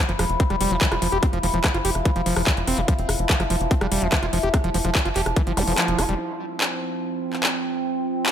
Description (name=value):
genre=psychedelic trance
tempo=145 BPM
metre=4/4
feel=straight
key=unclear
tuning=A4 = 438 Hz
part: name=overtone-sweeping drone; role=sustained chords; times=0.1-8.3 s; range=F3 to E4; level=-26 LUFS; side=equal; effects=chorus, built-in reverb, sidechain pumping
part: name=overdriven acid bass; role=riff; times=0.0-6.1 s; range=E3 to G4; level=-26 LUFS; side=right 1 dB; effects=distortion, auto-pan, sidechain pumping, digital delay
part: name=tight sequencer bass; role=bass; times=0.1-6.2 s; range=F1 to G1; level=-26 LUFS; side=equal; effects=tube saturation
part: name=garage drum kit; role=drums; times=0.1-8.3 s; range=handclaps, hi-hat, rim click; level=-25 LUFS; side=left 1 dB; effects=small room ambience
part: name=electronic kick drum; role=drums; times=0.4-5.4 s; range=none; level=-20 LUFS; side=equal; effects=small room ambience
part: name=zap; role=sound effects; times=5.6-5.7 s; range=none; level=-31 LUFS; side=equal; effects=none
room=light reverb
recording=none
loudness=-20 LUFS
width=side -9 dB against mid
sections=0.0-6.2 A section; 6.2-8.3 B section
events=kick drops out 5.8-6.2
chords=0.0 F5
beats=0.40 0.81 | 1.23 1.64 2.05 2.47 | 2.88 3.30 3.71 4.12 | 4.54 4.95 5.37 5.78 | 6.19 6.61 7.02 7.43 | 7.85 8.26